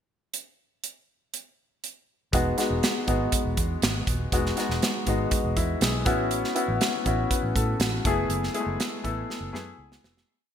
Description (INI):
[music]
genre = polished 1980s jazz-funk pop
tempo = 121 BPM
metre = 4/4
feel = straight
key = E major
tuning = A4 = 441 Hz
[part]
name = modern studio drum kit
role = drums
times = 0.3-10.3 s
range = hi-hat, kick drum, snare drum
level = -27 LUFS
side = right 1 dB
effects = gated reverb
[part]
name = warm grand piano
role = accompaniment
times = 2.3-10.3 s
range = G#3 to B4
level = -27 LUFS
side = left 2 dB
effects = lush chorus
[part]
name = vintage muted fingered electric bass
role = bass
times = 2.3-10.2 s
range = D#1 to A2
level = -29 LUFS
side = right 1 dB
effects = none
[sound]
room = light reverb, small room ambience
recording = bright 1980s-style digital production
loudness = -23 LUFS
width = side -9 dB against mid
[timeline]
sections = 0.3-2.3 pickup bar; 2.3-10.3 verse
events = fade-out 8.3-10.3; drum fill 9.3-10.3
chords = 0.3 N.C.; 2.3 Emaj9; 6.1 A6; 8.0 F#m11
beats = | 0.33 0.83 1.33 1.83 | 2.33 2.83 3.33 3.82 | 4.32 4.82 5.32 5.81 | 6.31 6.81 7.30 7.80 | 8.30 8.79 9.29 9.79